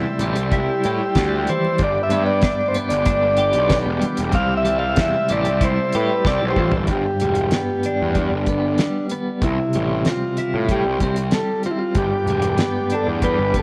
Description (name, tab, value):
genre	psychedelic rock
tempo	94 BPM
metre	4/4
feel	straight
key	G major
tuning	A4 = 440 Hz
part	combo organ	sustained chords	0.0-6.9, 12.0-13.6 s	C4 to E6	-33 LUFS	equal	none
part	twelve-string electric guitar	riff	0.0-13.6 s	G2 to G4	-26 LUFS	equal	tremolo
part	fuzz picked electric bass	bass	0.0-13.6 s	E1 to A2	-26 LUFS	equal	overdrive
part	congas	percussion	0.1-13.2 s	none	-39 LUFS	equal	none
part	damped 70s drum kit	drums	0.2-13.6 s	hi-hat, kick drum, snare drum, toms	-24 LUFS	equal	none
part	combo organ	melody	0.5-13.6 s	D4 to F5	-24 LUFS	equal	tape echo
room	light reverb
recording	none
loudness	-20 LUFS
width	mono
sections	0.0-6.9 A section; 6.9-13.6 B section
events	transistor combo organ solo 0.0-6.9; drum fill 6.2-6.9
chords	0.0 C; 1.8 G; 4.3 C; 6.9 G; 9.4 C; 12.0 G